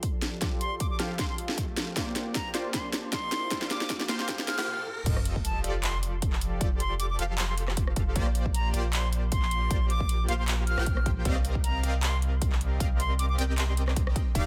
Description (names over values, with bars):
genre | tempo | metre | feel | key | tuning
future bass | 155 BPM | 4/4 | swing 54% on 16ths, half-time | Bb major | A4 = 440 Hz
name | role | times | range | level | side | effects
supersaw stab | riff | 0.0-14.5 s | Eb3 to G5 | -38 LUFS | equal | sidechain pumping, low-pass filter
electronic kick drum | drums | 0.0-14.4 s | none | -32 LUFS | equal | none
trap drum kit | drums | 0.0-14.4 s | crash cymbal, handclaps, hi-hat, rim click, snare drum, toms | -35 LUFS | equal | none
riser and sub drop | sound effects | 1.7-6.6 s | none | -42 LUFS | equal | none
bright reedy concert flute | melody | 0.6-13.7 s | A5 to F6 | -37 LUFS | equal | sidechain pumping, tape echo
unison pluck | arpeggios | 5.1-14.5 s | D5 to G5 | -44 LUFS | equal | none
saturated sub bass | bass | 5.1-14.5 s | Eb1 to C2 | -31 LUFS | equal | sidechain pumping
room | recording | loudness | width
light reverb, digital ambience | dense, heavily limited modern master, high-pass filter | -28 LUFS | mono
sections
0.0-5.1 A section; 5.1-14.5 B section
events
build-up 0.0-5.1; drum fill 0.0-4.7, 4.7-5.1; filter sweep on supersaw synth 0.0-5.1; filter sweep 0.0-5.1; drop 5.1-14.5; impact 5.1-6.6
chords
0.0 Fadd9; 2.0 Bb6; 5.1 F9; 8.2 Bb6; 11.3 Cm11